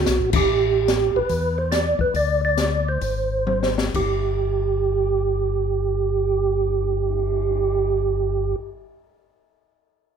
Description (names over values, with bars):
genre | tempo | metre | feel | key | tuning
soul jazz organ trio | 125-148 BPM | 4/4 | swing 65% on 8ths | G major | A4 = 440 Hz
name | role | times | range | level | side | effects
percussive tonewheel organ | melody | 0.0-8.6 s | F#4 to D5 | -21 LUFS | right 5 dB | slow rotary speaker, chorus vibrato
mellow tonewheel organ | bass | 0.0-8.6 s | F#1 to E2 | -25 LUFS | left 3 dB | overdrive, chorus vibrato, slow rotary speaker
open jazz drum kit | drums | 0.1-7.7 s | crash cymbal, cymbal swell, hi-hat, kick drum, snare drum, toms | -26 LUFS | left 4 dB | none
room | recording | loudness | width
moderate large studio reverb, RT60 1.1 s | minimal, uncompressed stereo recording | -19 LUFS | side -7 dB against mid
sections
0.5-3.9 A section; 3.9-7.8 B section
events
band accent 0.3; slowing down 0.5-3.9; drum fill 3.5-3.9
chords
0.5 Gsus2/A; 1.3 Cmaj9/E (rootless); 2.1 N.C.; 3.0 Ab; 3.9 N.C.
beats
0.07 | 0.48 0.88 1.30 1.71 | 2.14 2.57 3.02 3.47 | 3.95 4.43 4.91 5.39 | 5.87 6.35 6.83 7.31